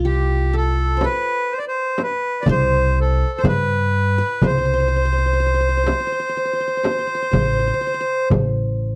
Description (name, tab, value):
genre	Arabic maqam ensemble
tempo	124 BPM (eighths)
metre	10/8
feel	straight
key	unclear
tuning	A4 = 439 Hz
part	qanun	second line	0.0-9.0 s	F4 to D5	-28 LUFS	equal	none
part	upright bass	bass	0.0-9.0 s	A1 to G2	-22 LUFS	equal	none
part	accordion	melody	0.1-8.3 s	G4 to D5	-23 LUFS	equal	none
part	darbuka	percussion	1.0-8.9 s	none	-26 LUFS	equal	none
part	frame drum	percussion	1.0-8.5 s	none	-25 LUFS	equal	none
room	light reverb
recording	dark, warm production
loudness	-19 LUFS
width	mono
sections	0.0-9.0 A section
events	none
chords	none